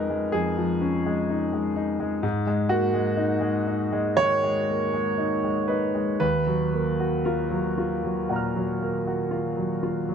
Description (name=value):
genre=neoclassical minimalist piano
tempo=56-64 BPM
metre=4/4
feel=rubato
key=unclear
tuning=A4 = 440 Hz
part: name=clear grand piano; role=solo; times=0.0-10.1 s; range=D#2 to E#6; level=-23 LUFS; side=equal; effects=none
room=light reverb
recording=none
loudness=-23 LUFS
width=side -7 dB against mid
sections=0.0-10.1 A section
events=none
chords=0.0 C#add9/E#; 2.2 G#sus2; 6.2 D#madd9